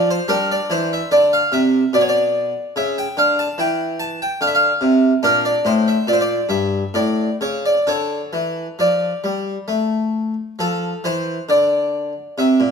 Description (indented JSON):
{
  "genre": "classical, baroque-style suite movement for harpsichord",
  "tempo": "64-74 BPM",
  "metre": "3/4",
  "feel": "rubato",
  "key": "D minor",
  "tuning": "A4 = 440 Hz",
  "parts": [
    { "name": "harpsichord", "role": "solo", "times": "0.0-12.7 s", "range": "G2 to A5", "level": "-16 LUFS", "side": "equal", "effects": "none" }
  ],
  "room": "wet stone room reverb, RT60 1.3 s",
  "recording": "none",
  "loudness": "-16 LUFS",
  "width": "side -6 dB against mid",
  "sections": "0.0-10.6 A section; 10.6-12.7 B section",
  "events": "none",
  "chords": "0.3 G5; 1.9 N.C.; 2.8 C#dim; 4.4 Dm; 5.2 Bb; 6.1 Gm6; 7.0 A; 7.9 D5; 10.6 Dm"
}